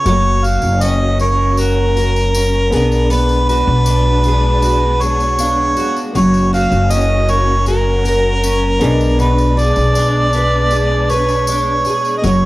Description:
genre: acoustic pop.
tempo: 79 BPM.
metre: 4/4.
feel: straight.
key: unclear.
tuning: A4 = 440 Hz.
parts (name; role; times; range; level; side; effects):
dark upright piano; accompaniment; 0.0-12.5 s; A3 to E#5; -24 LUFS; left 1 dB; cassette tape.
picked steel-string acoustic guitar; accompaniment; 0.0-12.5 s; B2 to B4; -19 LUFS; equal; double-tracked left and right, cassette tape.
mellow harmonica; melody; 0.1-12.5 s; A#4 to E#5; -16 LUFS; right 1 dB; cassette tape, analog delay.
warm studio string section; sustained chords; 0.1-12.5 s; F#3 to D4; -25 LUFS; equal; cassette tape.
upright bass; bass; 0.1-12.5 s; F#1 to B1; -16 LUFS; equal; none.
tambourine; percussion; 0.1-12.4 s; none; -30 LUFS; left 4 dB; none.
room: light reverb.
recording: home recording on cassette.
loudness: -12 LUFS.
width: side -18 dB against mid.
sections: 0.1-12.5 A section.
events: none.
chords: 0.1 F#; 2.7 Bm6; 6.1 F#; 8.8 Bm6.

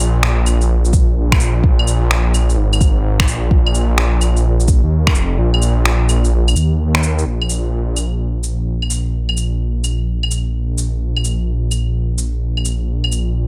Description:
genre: future garage.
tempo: 128 BPM.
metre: 4/4.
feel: swing 66% on 16ths.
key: unclear.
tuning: A4 = 440 Hz.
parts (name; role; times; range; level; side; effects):
swelling detuned saw bass; bass; 0.0-13.5 s; F1 to Eb2; -18 LUFS; equal; sidechain pumping.
electronic shaker, finger snaps and claves; drums; 0.0-13.2 s; none; -23 LUFS; equal; none.
electronic kick drum; drums; 0.9-5.1 s; none; -16 LUFS; equal; none.
room: little or no reverb.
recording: none.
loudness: -16 LUFS.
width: mono.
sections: 0.0-7.3 A section; 7.3-13.5 B section.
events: kick drops out 5.4-7.3.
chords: none.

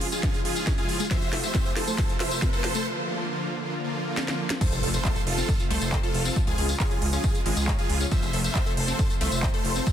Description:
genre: uplifting trance.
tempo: 137 BPM.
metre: 4/4.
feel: straight.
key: F major.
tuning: A4 = 440 Hz.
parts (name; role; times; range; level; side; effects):
big supersaw lead; melody; 0.0-9.9 s; F4 to E5; -31 LUFS; right 1 dB; phaser, sidechain pumping, tape echo.
techno drum kit; drums; 0.0-9.9 s; crash cymbal, handclaps, hi-hat, snare drum, tambourine; -31 LUFS; equal; none.
riser and impact; sound effects; 0.0-6.4 s; none; -37 LUFS; right 1 dB; none.
supersaw pad; sustained chords; 0.1-9.9 s; C3 to F4; -32 LUFS; equal; sidechain pumping.
wide unison pluck; arpeggios; 0.1-9.9 s; D3 to Db5; -35 LUFS; left 3 dB; phaser, sidechain pumping, tape echo.
electronic kick drum; drums; 0.2-9.9 s; none; -26 LUFS; equal; none.
gritty driven synth bass; bass; 4.7-9.8 s; F1 to Db2; -28 LUFS; equal; sidechain pumping.
room: little or no reverb.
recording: dense, heavily limited modern master.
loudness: -23 LUFS.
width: side -10 dB against mid.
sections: 0.0-4.6 A section; 4.6-9.9 B section.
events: build-up 0.0-4.6; drum fill 0.0-2.9, 4.2-4.6; riser 0.0-2.9; filter sweep on synth pluck 0.0-4.6; break 2.9-4.6; drop 4.6-9.9; impact 4.6-6.4.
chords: 0.0 Db; 1.1 F; 2.9 Bb; 4.6 F; 6.4 Db; 8.1 F.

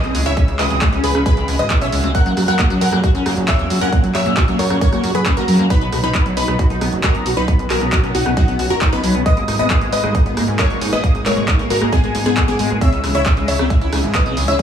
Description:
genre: uplifting trance.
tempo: 135 BPM.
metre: 4/4.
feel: straight.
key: G# minor.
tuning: A4 = 443 Hz.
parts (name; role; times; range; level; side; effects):
wide unison pluck; melody; 0.0-14.6 s; B3 to F#5; -22 LUFS; left 1 dB; sidechain pumping, digital delay.
plucky unison lead; second line; 0.0-14.6 s; F#5 to F#6; -26 LUFS; left 1 dB; sidechain pumping, digital delay.
supersaw pad; sustained chords; 0.0-14.6 s; A#2 to G#4; -25 LUFS; right 1 dB; sidechain pumping.
liquid acid bass; arpeggios; 0.0-14.6 s; F#3 to F#4; -23 LUFS; left 1 dB; phaser, lush chorus, sidechain pumping, digital delay.
plucky analog bass; bass; 0.0-14.6 s; F#1 to G#2; -20 LUFS; equal; sidechain pumping.
punchy analog drum machine; drums; 0.0-14.6 s; handclaps, hi-hat, rim click; -23 LUFS; equal; none.
electronic kick drum; drums; 0.4-14.6 s; none; -16 LUFS; right 1 dB; none.
room: light reverb, digital ambience.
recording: small room ambience.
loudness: -14 LUFS.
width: side -9 dB against mid.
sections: 0.0-14.6 A section.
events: none.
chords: 0.0 C#m; 2.1 F#; 5.7 B; 9.3 G#madd9; 12.8 C#m.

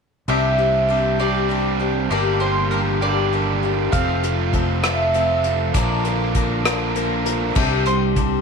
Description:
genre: folk rock and heartland rock.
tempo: 66 BPM (dotted quarters).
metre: 6/8.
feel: straight.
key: unclear.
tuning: A4 = 440 Hz.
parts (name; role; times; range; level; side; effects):
mandolin; melody; 0.3-8.4 s; Bb4 to F5; -23 LUFS; right 2 dB; none.
picked swing-style acoustic guitar; accompaniment; 0.3-8.4 s; G2 to Bb4; -23 LUFS; left 11 dB; none.
biting overdriven guitar; riff; 0.3-8.4 s; F2 to G4; -24 LUFS; right 11 dB; none.
fingered electric bass; bass; 0.3-8.4 s; F1 to C2; -23 LUFS; equal; none.
unplugged drum kit; drums; 3.9-8.3 s; crash cymbal, hi-hat, kick drum, rim click; -22 LUFS; equal; none.
room: moderate echo chamber reverb, RT60 1.7 s, studio ambience.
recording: 1960s-style stereo with parts hard left and right.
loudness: -17 LUFS.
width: side -5 dB against mid.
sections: 0.3-7.6 A section.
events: none.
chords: 0.3 Csus2; 2.1 Gm; 3.9 F; 5.8 Bb; 7.6 Csus2.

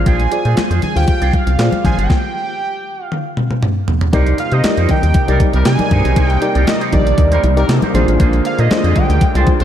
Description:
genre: early-eighties boogie funk.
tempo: 118 BPM.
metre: 4/4.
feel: straight.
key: C minor.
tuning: A4 = 440 Hz.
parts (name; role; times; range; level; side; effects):
fat analog lead; melody; 0.0-9.5 s; D5 to Ab5; -21 LUFS; right 2 dB; phaser, analog delay.
FM electric piano with tremolo; accompaniment; 0.0-9.6 s; D4 to F5; -21 LUFS; left 1 dB; none.
rubbery square bass; bass; 0.0-9.6 s; G1 to C3; -14 LUFS; equal; none.
electric guitar with an envelope filter; riff; 0.1-9.6 s; Bb3 to D5; -25 LUFS; right 6 dB; lush chorus.
crisp 8-bit digital drum machine; drums; 0.1-9.6 s; handclaps, hi-hat, kick drum, snare drum, toms; -17 LUFS; equal; overdrive.
congas; percussion; 0.1-9.6 s; none; -23 LUFS; left 2 dB; none.
brassy analog pad; sustained chords; 4.1-9.6 s; C3 to Eb4; -23 LUFS; equal; chorus.
warm horn section; second line; 5.3-9.6 s; G3 to C5; -28 LUFS; left 2 dB; analog delay.
room: moderate lush hall reverb, RT60 2.0 s.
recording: dreamy mix soaked in reverb.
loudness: -12 LUFS.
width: side -10 dB against mid.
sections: 0.0-4.1 A section; 4.1-9.6 B section.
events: stop 2.1-4.1; drum fill 3.1-4.1.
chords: 0.0 Bb9; 2.1 N.C.; 4.1 Cm7; 7.9 Bb9.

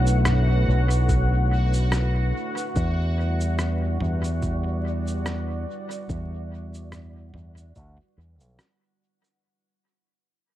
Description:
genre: ambient dub.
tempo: 72 BPM.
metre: 4/4.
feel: swing 56% on 16ths.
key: E dorian.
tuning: A4 = 440 Hz.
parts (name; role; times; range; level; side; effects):
deep dark ambient pad; sustained chords; 0.0-9.4 s; G3 to D5; -32 LUFS; equal; chorus, built-in reverb.
fingered electric bass with an envelope filter; bass; 0.0-8.6 s; B1 to E2; -23 LUFS; equal; tube saturation.
bubbling stepped-filter texture; texture; 0.0-9.4 s; F#4 to F#5; -33 LUFS; left 1 dB; chorus, built-in reverb.
lo-fi sampler-style drum kit; drums; 0.1-9.4 s; cabasa, rim click, toms; -32 LUFS; equal; overdrive, dub echo.
electronic kick drum; drums; 1.1-7.9 s; none; -27 LUFS; equal; overdrive.
room: digital ambience.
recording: echo-heavy mix, vinyl crackle.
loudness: -21 LUFS.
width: side -13 dB against mid.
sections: 0.0-9.4 A section.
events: fade-out 0.5-9.4.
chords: 0.0 Bm11; 2.8 Em7.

